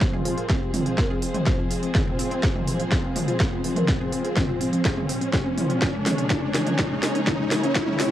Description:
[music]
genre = melodic techno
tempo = 124 BPM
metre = 4/4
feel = straight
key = F minor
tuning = A4 = 440 Hz
[part]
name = expressive synth lead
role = melody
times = 0.0-8.1 s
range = Ab3 to C5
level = -31 LUFS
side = equal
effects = wide subtle chorus, sidechain pumping, analog delay
[part]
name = warm studio string section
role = sustained chords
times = 0.0-8.1 s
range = F3 to Db5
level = -31 LUFS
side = equal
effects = sidechain pumping, low-pass filter
[part]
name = wide unison pluck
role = arpeggios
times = 0.0-8.1 s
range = C3 to Ab4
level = -32 LUFS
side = right 1 dB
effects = sidechain pumping, tape echo
[part]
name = brassy analog pad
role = stabs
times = 0.0-8.1 s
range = Db3 to F4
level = -31 LUFS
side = left 2 dB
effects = chorus, vintage 12-bit sampler grit, sidechain pumping, tape echo
[part]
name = electronic kick drum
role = drums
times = 0.0-7.9 s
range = none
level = -25 LUFS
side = equal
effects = none
[part]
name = techno drum kit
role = drums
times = 0.0-8.1 s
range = hi-hat, snare drum, toms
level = -27 LUFS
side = equal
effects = sidechain pumping on hats, sidechain pumping on toms
[part]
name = riser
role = sound effects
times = 0.5-8.1 s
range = none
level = -31 LUFS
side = left 1 dB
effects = none
[sound]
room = light reverb, digital ambience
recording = dry, gritty hardware recording, cassette tape, high-pass filter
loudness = -21 LUFS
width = side -12 dB against mid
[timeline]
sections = 0.0-8.1 A section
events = build-up 0.0-8.1; drum fill 0.0-8.1; filter sweep on analog synth lead 0.0-8.1; filter sweep 0.0-8.1; riser 0.5-8.1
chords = 0.0 Fm; 5.8 Db6

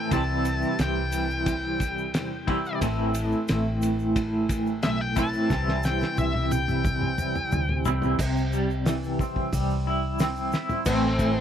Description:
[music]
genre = psychedelic rock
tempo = 89 BPM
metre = 4/4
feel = straight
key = unclear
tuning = A4 = 440 Hz
[part]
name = octave-fuzz lead guitar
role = melody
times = 0.0-11.4 s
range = C4 to A5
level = -30 LUFS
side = left 2 dB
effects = distortion, tape echo
[part]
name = twangy electric guitar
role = riff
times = 0.0-11.4 s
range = A2 to E4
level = -26 LUFS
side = right 1 dB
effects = tremolo, double-tracked left and right
[part]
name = vintage muted fingered electric bass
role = bass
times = 0.1-11.4 s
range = A1 to E2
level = -29 LUFS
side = equal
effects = none
[part]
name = cloth-damped thuddy drum kit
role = drums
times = 0.1-11.3 s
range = crash cymbal, hi-hat, kick drum, ride cymbal, snare drum, toms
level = -30 LUFS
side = equal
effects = none
[part]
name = tube shaker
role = percussion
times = 0.1-11.3 s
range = none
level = -45 LUFS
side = right 12 dB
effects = none
[sound]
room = little or no reverb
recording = dry, close 1970s-style studio recording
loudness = -23 LUFS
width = side -9 dB against mid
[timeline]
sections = 0.0-8.2 A section; 8.2-10.9 B section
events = lead electric guitar solo 0.0-8.2; drum fill 5.5-8.2, 10.5-10.9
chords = 0.1 C; 2.8 Am; 5.5 C; 10.9 Am

